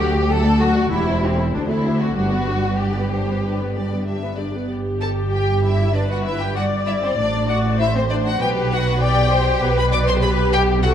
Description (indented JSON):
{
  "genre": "quick classical-period movement for string orchestra",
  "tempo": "98 BPM",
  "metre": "4/4",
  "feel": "straight",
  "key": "G major",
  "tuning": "A4 = 442 Hz",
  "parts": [
    { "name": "rich symphonic violin section", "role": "melody", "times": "0.0-10.9 s", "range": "B4 to D6", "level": "-27 LUFS", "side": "left 4 dB", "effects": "none" },
    { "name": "warm symphonic violin section", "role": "second line", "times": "0.0-10.9 s", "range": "C4 to D5", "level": "-24 LUFS", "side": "left 2 dB", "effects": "none" },
    { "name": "rich symphonic viola section", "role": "accompaniment", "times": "0.0-10.9 s", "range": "F#3 to D5", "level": "-23 LUFS", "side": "left 1 dB", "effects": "none" },
    { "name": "rich symphonic cello section", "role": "bass", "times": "0.0-10.9 s", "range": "D2 to C3", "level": "-23 LUFS", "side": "right 1 dB", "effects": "none" },
    { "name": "rich symphonic double bass section", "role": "bass", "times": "0.0-10.9 s", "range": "E1 to D2", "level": "-22 LUFS", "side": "right 2 dB", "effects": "none" }
  ],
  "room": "wet scoring stage reverb, RT60 1.8 s",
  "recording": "dark, warm production",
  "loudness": "-17 LUFS",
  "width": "side -9 dB against mid",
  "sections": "0.0-4.7 A section; 4.7-10.9 A section",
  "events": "none",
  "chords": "0.0 D; 0.9 C/E; 1.5 D7; 2.2 G; 7.2 D5/A; 8.4 G/B"
}